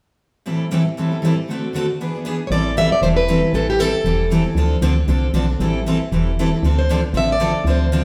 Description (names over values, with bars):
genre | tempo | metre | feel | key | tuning
acoustic string swing (jazz manouche) | 233 BPM | 4/4 | swing 56% on 8ths | A minor | A4 = 440 Hz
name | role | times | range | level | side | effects
picked steel-string acoustic guitar | accompaniment | 0.5-8.0 s | A2 to A4 | -23 LUFS | equal | none
picked steel-string acoustic guitar | accompaniment | 0.5-8.0 s | A2 to B4 | -27 LUFS | equal | none
picked plugged-in steel-string acoustic guitar | melody | 2.5-4.3, 6.8-8.0 s | G4 to E5 | -22 LUFS | equal | none
woody FM bass | bass | 2.5-8.0 s | E1 to D2 | -22 LUFS | equal | none
room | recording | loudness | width
wet stone room reverb, RT60 1.1 s | band playing live in one room | -19 LUFS | mono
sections
0.5-2.5 A section; 2.5-8.0 B section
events
none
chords
0.5 Am7; 1.5 D7; 2.0 E7; 2.5 Am7; 4.6 Dm7; 5.6 Am7; 6.6 Dm7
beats
| 0.45 0.71 0.97 1.23 | 1.48 1.74 2.00 2.25 | 2.51 2.77 3.03 3.28 | 3.54 3.80 4.06 4.31 | 4.57 4.83 5.08 5.34 | 5.60 5.86 6.12 6.37 | 6.63 6.89 7.15 7.41 | 7.66 7.92